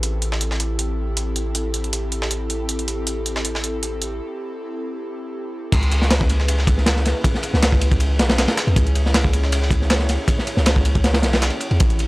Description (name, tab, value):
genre	drum and bass, jungle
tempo	158 BPM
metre	4/4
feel	swing 53% on 16ths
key	unclear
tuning	A4 = 441 Hz
part	airy breathy pad	sustained chords	0.0-12.1 s	C4 to C#5	-28 LUFS	equal	chorus
part	long sustained 808-style bass	bass	0.0-12.1 s	A1 to E2	-20 LUFS	equal	transformer saturation
part	breakbeat sampler-style drum kit	drums	0.0-12.1 s	hi-hat, snare drum	-26 LUFS	right 1 dB	high-pass filter on hats, high-pass filter on snare
part	crunchy breakbeat drum kit	drums	5.7-12.1 s	crash cymbal, kick drum, ride cymbal, snare drum	-19 LUFS	equal	none
room	small room ambience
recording	dry, gritty hardware recording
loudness	-17 LUFS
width	side -21 dB against mid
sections	0.0-5.7 A section; 5.7-12.1 B section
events	break 4.2-5.7; drop 5.7-12.1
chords	0.0 Am7; 5.7 C#m7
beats	0.03 0.41 0.79 | 1.17 1.55 1.93 2.31 | 2.69 3.07 3.45 3.83 | 4.21 4.59 4.96 5.34 | 5.72 6.11 6.48 6.86 | 7.24 7.62 8.00 8.38 | 8.76 9.14 9.52 9.90 | 10.28 10.66 11.04 11.42 | 11.80